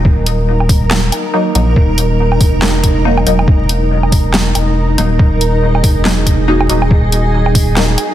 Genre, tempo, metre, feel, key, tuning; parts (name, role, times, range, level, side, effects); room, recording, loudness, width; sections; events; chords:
deep dubstep; 140 BPM; 4/4; swing 58% on 16ths, half-time; Eb phrygian; A4 = 438 Hz
granular cloud pad; sustained chords; 0.0-8.1 s; Eb4 to Bb4; -18 LUFS; right 1 dB; built-in reverb
saturated sub bass; bass; 0.0-8.0 s; Eb1 to Bb1; -14 LUFS; equal
electronic kick drum; drums; 0.1-7.7 s; -11 LUFS; equal
dubstep drum kit; drums; 0.3-8.1 s; handclaps, hi-hat, snare drum, woodblock; -18 LUFS; right 1 dB
filtered dub chord stab; stabs; 0.9-7.9 s; Gb3 to Eb4; -18 LUFS; equal; phaser, lush chorus, dub echo
light reverb, digital ambience; dense, heavily limited modern master, vinyl crackle; -10 LUFS; side -12 dB against mid
0.0-8.1 A section
0.0 Ebm